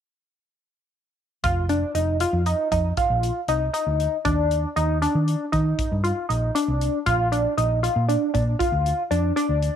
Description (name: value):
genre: progressive instrumental, band music in an uneven meter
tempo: 234 BPM (eighths)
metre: 11/8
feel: straight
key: unclear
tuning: A4 = 440 Hz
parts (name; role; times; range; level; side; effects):
- tight sequenced synth; arpeggios; 1.4-9.8 s; D4 to F4; -23 LUFS; equal; chorus, phaser
- hollow-body short-scale picked electric bass; bass; 1.4-9.7 s; F1 to Eb3; -23 LUFS; equal; none
- natural country drum kit; drums; 1.4-9.7 s; hi-hat, kick drum; -30 LUFS; left 1 dB; none
room: light reverb, small room ambience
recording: 1960s-style stereo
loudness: -20 LUFS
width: side -9 dB against mid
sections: 1.4-9.8 A section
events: none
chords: 1.4 F5; 4.3 Ebmaj7(no3); 7.1 Bb